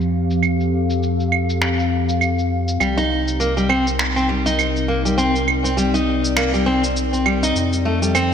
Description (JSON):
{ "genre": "organic downtempo", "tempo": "101 BPM", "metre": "4/4", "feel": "swing 57% on 16ths", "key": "C dorian", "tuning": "A4 = 440 Hz", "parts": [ { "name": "warbly tape-like pad", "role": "sustained chords", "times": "0.0-8.3 s", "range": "C3 to F5", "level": "-22 LUFS", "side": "left 2 dB", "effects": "chorus, built-in reverb" }, { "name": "warm sub bass", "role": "bass", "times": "0.0-8.3 s", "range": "C2 to F2", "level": "-23 LUFS", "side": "equal", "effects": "none" }, { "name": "electronic shaker, claves and finger snaps", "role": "drums", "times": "0.0-8.3 s", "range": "none", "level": "-23 LUFS", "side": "right 4 dB", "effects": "overdrive, low-pass filter on perc, low-pass filter on snare" }, { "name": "nylon-string guitar", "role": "arpeggios", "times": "2.8-8.3 s", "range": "G3 to Eb4", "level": "-19 LUFS", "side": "equal", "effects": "ping-pong delay" } ], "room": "wet lush hall reverb, RT60 1.7 s", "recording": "bright 1980s-style digital production", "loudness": "-16 LUFS", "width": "side -7 dB against mid", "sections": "0.0-8.3 A section", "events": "none", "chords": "0.0 Fadd9; 2.8 Cm7; 7.6 Fadd9" }